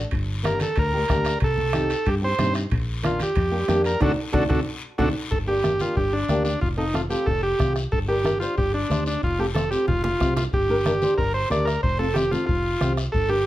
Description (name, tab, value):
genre	latin, cumbia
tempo	184 BPM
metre	4/4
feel	straight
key	G minor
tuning	A4 = 440 Hz
part	fingered electric bass	bass	0.0-13.5 s	F1 to G2	-26 LUFS	equal	none
part	bombo	percussion	0.1-13.3 s	none	-27 LUFS	left 1 dB	none
part	guiro	percussion	0.1-13.5 s	none	-38 LUFS	left 5 dB	none
part	timbales	percussion	0.1-5.1 s	none	-33 LUFS	right 3 dB	none
part	overdriven combo organ	melody	0.4-13.5 s	D4 to D5	-24 LUFS	right 1 dB	plate reverb
part	flamenco guitar	accompaniment	0.4-13.4 s	Bb3 to C5	-28 LUFS	left 1 dB	none
part	congas	percussion	0.4-13.0 s	none	-31 LUFS	right 1 dB	none
room	wet studio ambience, RT60 0.5 s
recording	none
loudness	-20 LUFS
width	side -14 dB against mid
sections	0.0-5.3 A section; 5.3-13.5 B section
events	band accent 4.0-5.3; drum fill 4.7-5.3, 9.5-10.5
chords	0.1 Gm; 1.4 Cm; 2.7 Bb; 4.0 D7; 5.3 Gm; 6.6 F; 7.9 G5; 9.2 F5; 10.5 Gm; 11.8 F